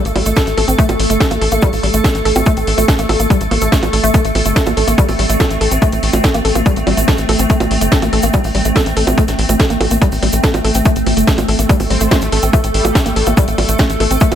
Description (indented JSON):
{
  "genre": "psychedelic trance",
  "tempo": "143 BPM",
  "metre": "4/4",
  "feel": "straight",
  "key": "A phrygian",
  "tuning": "A4 = 439 Hz",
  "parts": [
    { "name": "swarming drone", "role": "sustained chords", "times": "0.0-14.4 s", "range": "A3 to A4", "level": "-19 LUFS", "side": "equal", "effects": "built-in reverb, sidechain pumping" },
    { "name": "woody wave-folded pluck", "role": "riff", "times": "0.0-14.3 s", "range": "G3 to A4", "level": "-19 LUFS", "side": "moving between left 5 dB and right 3 dB", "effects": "chorus, auto-pan, cassette tape, sidechain pumping, ping-pong delay" },
    { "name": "tight sequencer bass", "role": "bass", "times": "0.1-14.4 s", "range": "G1 to A1", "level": "-17 LUFS", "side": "equal", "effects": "none" },
    { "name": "techno drum kit", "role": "drums", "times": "0.1-14.4 s", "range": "bongos, hi-hat, snare drum", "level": "-19 LUFS", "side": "right 1 dB", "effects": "none" },
    { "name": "tube shaker", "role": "percussion", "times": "0.1-14.4 s", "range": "none", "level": "-27 LUFS", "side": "right 4 dB", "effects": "none" },
    { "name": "electronic kick drum", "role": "drums", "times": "0.4-14.3 s", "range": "none", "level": "-13 LUFS", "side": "equal", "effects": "none" },
    { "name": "metallic wobble bass", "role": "second line", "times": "11.9-13.3 s", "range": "G3 to C4", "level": "-27 LUFS", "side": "left 2 dB", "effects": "ensemble chorus, sidechain pumping, high-pass filter, ping-pong delay" }
  ],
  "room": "light reverb",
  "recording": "none",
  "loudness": "-11 LUFS",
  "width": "side -10 dB against mid",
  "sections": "0.0-14.4 A section",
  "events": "none",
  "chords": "0.0 A5"
}